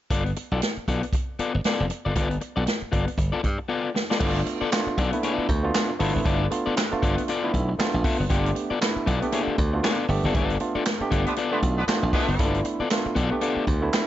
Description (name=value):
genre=funk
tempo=117 BPM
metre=4/4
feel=swing 60% on 16ths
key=G mixolydian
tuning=A4 = 444 Hz
part: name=electric guitar at the edge of break-up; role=accompaniment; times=0.1-13.9 s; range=B3 to E5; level=-28 LUFS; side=left 5 dB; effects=plate reverb
part: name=slap bass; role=bass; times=0.1-13.9 s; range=F1 to G2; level=-26 LUFS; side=equal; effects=none
part: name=swinging big-band drum kit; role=drums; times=0.1-14.1 s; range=crash cymbal, handclaps, hi-hat, kick drum, snare drum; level=-26 LUFS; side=equal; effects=none
part: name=barky tine electric piano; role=stabs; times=4.2-14.1 s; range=A3 to G4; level=-27 LUFS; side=right 2 dB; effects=overdrive, tape echo, plate reverb
part: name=clear horn section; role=second line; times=11.3-12.5 s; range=F3 to B4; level=-30 LUFS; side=right 2 dB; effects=plate reverb
room=light reverb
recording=nothing above 7.6 kHz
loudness=-22 LUFS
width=side -13 dB against mid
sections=0.1-4.2 A section; 4.2-14.1 B section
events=drum fill 3.7-4.2; band accent 10.3-12.4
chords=0.1 G9